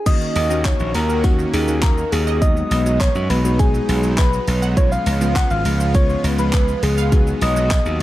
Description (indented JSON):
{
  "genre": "dance-pop",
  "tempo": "102 BPM",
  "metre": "4/4",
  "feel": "straight",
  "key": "Eb minor",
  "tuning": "A4 = 440 Hz",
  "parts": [
    { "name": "soft struck synth lead", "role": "melody", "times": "0.0-8.0 s", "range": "Gb4 to Gb5", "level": "-22 LUFS", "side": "left 1 dB", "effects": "chorus, tremolo" },
    { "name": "bell-like tine electric piano", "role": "accompaniment", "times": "0.1-8.0 s", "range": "G#3 to Gb4", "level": "-26 LUFS", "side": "left 3 dB", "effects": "medium stereo tremolo, sidechain pumping" },
    { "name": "supersaw pad", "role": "sustained chords", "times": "0.1-8.0 s", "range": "Db3 to Gb4", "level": "-28 LUFS", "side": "right 1 dB", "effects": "sidechain pumping" },
    { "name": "analog pluck", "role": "arpeggios", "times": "0.1-7.9 s", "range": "Eb3 to F#5", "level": "-30 LUFS", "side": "right 6 dB", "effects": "chorus, sidechain pumping, digital delay" },
    { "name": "pop drum kit", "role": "drums", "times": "0.1-8.0 s", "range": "crash cymbal, handclaps, hi-hat, kick drum, shaker", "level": "-19 LUFS", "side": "equal", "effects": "none" },
    { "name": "glassy slap bass", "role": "bass", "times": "0.4-8.0 s", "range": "Ab1 to F#2", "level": "-20 LUFS", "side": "equal", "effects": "sidechain pumping" },
    { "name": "tambourine", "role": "percussion", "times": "0.4-7.8 s", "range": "none", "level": "-37 LUFS", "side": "left 7 dB", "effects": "none" }
  ],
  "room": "little or no reverb",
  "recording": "dark, warm production",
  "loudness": "-15 LUFS",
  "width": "side -15 dB against mid",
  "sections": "0.1-8.0 A section",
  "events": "none",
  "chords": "0.1 Ebm7; 2.4 B6; 4.8 Db7; 7.1 Abm7",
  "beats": "| 0.06 0.65 1.24 1.83 | 2.42 3.00 3.59 4.18 | 4.77 5.36 5.95 6.53 | 7.12 7.71"
}